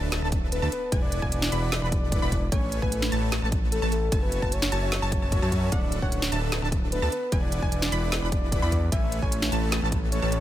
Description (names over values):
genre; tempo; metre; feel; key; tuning
future bass; 150 BPM; 4/4; half-time; A major; A4 = 443 Hz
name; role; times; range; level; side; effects
wide unison pluck; arpeggios; 0.0-10.3 s; F#5 to B5; -35 LUFS; right 2 dB; sidechain pumping, tape echo
dense compressed supersaw; riff; 0.0-10.3 s; A3 to B5; -33 LUFS; equal; sidechain pumping
fat analog bass; bass; 0.0-10.4 s; D1 to F#2; -27 LUFS; equal; sidechain pumping
sub drop; sound effects; 0.8-0.9 s; none; barely audible; none; none
trap drum kit; drums; 0.1-10.4 s; hi-hat, snare drum; -31 LUFS; right 1 dB; none
electronic kick drum; drums; 0.3-10.0 s; none; -27 LUFS; equal; overdrive
soft octave-layered synth lead; melody; 0.5-10.4 s; A4 to E5; -33 LUFS; left 2 dB; chorus, sidechain pumping, ping-pong delay
room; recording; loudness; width
digital ambience; none; -23 LUFS; side -13 dB against mid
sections
0.0-10.4 A section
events
impact 0.0-0.9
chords
0.0 D5; 0.7 E7; 2.5 Amaj7; 4.1 F#m7; 5.7 D6; 7.1 E7; 8.9 Amaj7